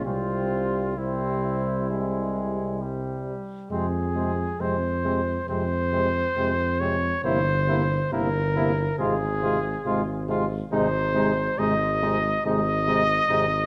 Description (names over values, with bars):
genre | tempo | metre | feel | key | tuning
classical, brass quintet | 67 BPM | 4/4 | uneven beats, rubato | F minor | A4 = 440 Hz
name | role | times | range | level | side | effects
warm trumpet | melody | 0.0-13.7 s | E4 to Eb5 | -28 LUFS | equal | none
warm flugelhorn | second line | 0.0-13.5 s | G3 to F4 | -35 LUFS | equal | none
warm French horn | accompaniment | 0.0-13.5 s | G3 to Bb3 | -33 LUFS | equal | none
mellow tuba | bass | 0.0-13.7 s | G1 to F2 | -30 LUFS | equal | none
clear trombone | accompaniment | 0.1-13.5 s | C3 | -36 LUFS | equal | none
room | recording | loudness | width
wet recital hall reverb, RT60 1.6 s | none | -25 LUFS | mono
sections
0.0-3.7 A section; 3.7-13.7 B section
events
none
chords
0.1 C; 3.7 Fm; 7.2 C7/G; 9.0 Fm/Ab